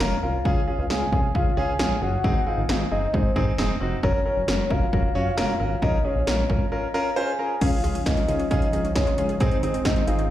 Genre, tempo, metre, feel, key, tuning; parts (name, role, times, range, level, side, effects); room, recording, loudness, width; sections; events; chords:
synth-pop; 134 BPM; 4/4; straight; Db major; A4 = 441 Hz
clear baby grand piano; accompaniment; 0.0-10.2 s; C4 to Db5; -28 LUFS; equal
chorused synth bass; bass; 0.0-10.3 s; F1 to Db2; -26 LUFS; equal
80s electronic pad drums; drums; 0.0-10.3 s; crash cymbal, hi-hat, kick drum, snare drum; -25 LUFS; equal
soft octave-layered synth lead; melody; 0.2-10.3 s; C5 to Ab5; -28 LUFS; left 1 dB; chorus, tremolo, tape echo
brassy analog pad; sustained chords; 7.6-10.3 s; F3 to Eb4; -31 LUFS; equal; chorus
wide unison pluck; arpeggios; 7.6-10.3 s; C4 to Ab4; -34 LUFS; left 3 dB
light reverb; played on a big sound system in a bare room, large studio reverb; -21 LUFS; side -13 dB against mid
0.0-7.6 A section; 7.6-10.3 B section
break 6.7-7.6
0.5 Db; 2.2 Ab; 4.0 Gb; 5.8 Bbm7; 7.6 Dbadd9; 9.4 Ab